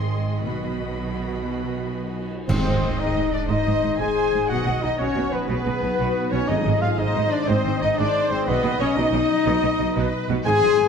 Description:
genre	cinematic, heroic adventure film score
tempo	120 BPM (dotted quarters)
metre	12/8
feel	straight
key	unclear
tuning	A4 = 442 Hz
part	warm symphonic violin section	melody	0.0-10.9 s	B4 to C6	-31 LUFS	left 4 dB	none
part	dark symphonic violin section	second line	0.0-10.9 s	B4 to Ab5	-32 LUFS	left 2 dB	none
part	clear symphonic viola section	accompaniment	0.0-10.9 s	F#4 to Eb5	-32 LUFS	right 2 dB	none
part	mellow French horn section	sustained chords	0.0-10.9 s	Eb3 to Ab4	-25 LUFS	left 6 dB	none
part	concert harp	arpeggios	0.0-10.9 s	Ab2 to Ab4	-31 LUFS	left 6 dB	none
part	clear symphonic cello section	bass	0.0-10.9 s	Ab2 to B2	-29 LUFS	right 4 dB	none
part	rich symphonic double bass section	bass	0.0-10.9 s	Ab1 to B1	-28 LUFS	right 5 dB	none
part	bright silver concert flute	second line	2.5-10.9 s	B4 to Ab5	-33 LUFS	right 1 dB	none
part	clear clarinet	second line	2.5-10.9 s	B4 to Ab5	-35 LUFS	right 1 dB	none
part	warm oboe	second line	2.5-10.9 s	B4 to Ab5	-33 LUFS	right 3 dB	none
part	mellow trumpet	stabs	2.5-10.9 s	B3 to Ab4	-30 LUFS	right 3 dB	none
part	clash cymbals and concert bass drum	percussion	2.5-3.1 s	none	-32 LUFS	right 2 dB	none
part	timpani	percussion	2.5-3.0, 6.5-7.0, 10.5-10.9 s	Ab2	-29 LUFS	equal	none
room	wet scoring stage reverb, RT60 1.5 s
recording	none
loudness	-20 LUFS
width	side -6 dB against mid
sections	0.0-2.5 A section; 2.5-10.9 B section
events	band accent 2.5-2.8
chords	0.5 B; 2.5 Ab; 4.5 B; 6.5 Ab; 8.5 B

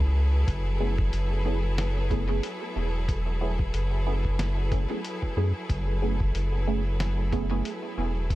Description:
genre	ambient dub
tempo	92 BPM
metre	4/4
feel	swing 56% on 16ths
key	F# minor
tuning	A4 = 440 Hz
part	bright studio string section	sustained chords	0.0-8.4 s	F#3 to B4	-35 LUFS	left 1 dB	none
part	warm sub bass	bass	0.0-8.4 s	E1 to F#2	-26 LUFS	equal	none
part	electronic kick drum	drums	0.0-8.4 s	none	-29 LUFS	equal	studio ambience
part	lo-fi sampler-style drum kit	drums	0.5-8.4 s	hi-hat, snare drum	-37 LUFS	equal	studio ambience, dub echo
part	filtered dub chord stab	stabs	0.8-8.1 s	A3 to G#4	-34 LUFS	right 3 dB	phaser, lush chorus, dub echo
room	little or no reverb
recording	echo-heavy mix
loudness	-25 LUFS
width	side -16 dB against mid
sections	0.0-8.4 A section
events	none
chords	0.0 F#m11

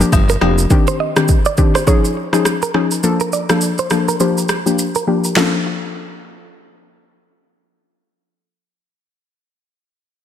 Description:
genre	afrobeats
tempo	103 BPM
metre	4/4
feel	swing 58% on 16ths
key	Bb major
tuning	A4 = 440 Hz
part	soft round pluck	accompaniment	0.0-9.0 s	Eb3 to A4	-17 LUFS	left 3 dB	chorus, low-pass filter
part	fat analog bass	bass	0.0-0.7 s	F1 to G1	-16 LUFS	equal	none
part	afro-pop drum kit	drums	0.0-5.5 s	handclaps, kick drum, rim click, shaker, snare drum	-17 LUFS	right 1 dB	overdrive
part	agogo bells and woodblock	percussion	0.1-0.6 s	none	-25 LUFS	left 6 dB	none
part	direct-recorded clean electric guitar	riff	0.3-5.5 s	F4 to Eb5	-22 LUFS	right 6 dB	low-pass filter, digital delay
room	light reverb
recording	dense, heavily limited modern master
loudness	-13 LUFS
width	side -10 dB against mid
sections	0.0-5.4 A section; 5.4-7.7 B section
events	filter sweep 0.0-5.4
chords	0.0 Gm7; 0.7 Cmadd9; 1.9 Dbadd9; 3.0 Bbmaj7; 4.2 Gm7; 5.4 Bbmaj7

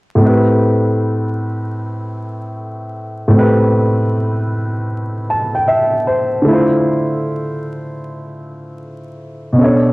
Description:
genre	hip hop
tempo	77 BPM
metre	4/4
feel	swing 64% on 16ths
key	A minor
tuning	A4 = 436 Hz
part	warm upright piano	accompaniment	0.2-9.9 s	A2 to A5	-14 LUFS	equal	low-pass filter, cassette tape
room	moderate spring reverb, RT60 1.7 s, studio ambience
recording	home recording on cassette, vinyl crackle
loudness	-13 LUFS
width	side -21 dB against mid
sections	0.2-9.9 A section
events	upright piano fill 4.9-6.5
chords	0.2 Am9; 6.5 Dm9

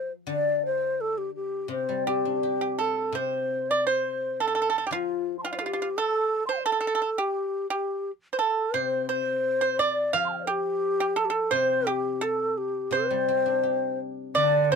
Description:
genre	chinese traditional, Chinese chamber ensemble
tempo	85 BPM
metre	2/4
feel	rubato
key	C zhi mode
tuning	A4 = 441 Hz
part	hollow low xiao	melody	0.0-14.8 s	F4 to C6	-27 LUFS	left 2 dB	none
part	guzheng	accompaniment	0.0-14.8 s	C3 to G4	-32 LUFS	left 3 dB	none
part	pipa	second line	2.1-14.8 s	F4 to F5	-27 LUFS	right 5 dB	none
part	warm cello	second line	14.4-14.8 s	D3	-25 LUFS	right 5 dB	none
room	little or no reverb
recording	close, detailed microphones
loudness	-24 LUFS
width	side -5 dB against mid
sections	0.0-3.1 A section; 3.1-14.4 B section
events	none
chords	none

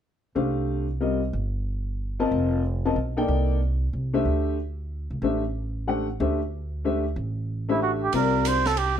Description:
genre	modal jazz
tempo	185 BPM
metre	3/4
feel	swing 64% on 8ths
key	unclear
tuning	A4 = 438 Hz
part	warm upright piano	accompaniment	0.4-9.0 s	G3 to A5	-25 LUFS	left 3 dB	none
part	upright bass	bass	0.4-9.0 s	F1 to D2	-27 LUFS	right 1 dB	none
part	trumpet with cup mute	melody	7.7-9.0 s	E4 to C5	-24 LUFS	right 6 dB	none
part	open jazz drum kit	drums	8.1-8.9 s	hi-hat, ride cymbal, snare drum	-31 LUFS	right 4 dB	none
room	light reverb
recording	dark, warm production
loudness	-23 LUFS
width	side -9 dB against mid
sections	0.4-8.1 A section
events	none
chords	0.4 C9sus4; 4.3 D9sus4; 8.1 C9sus4

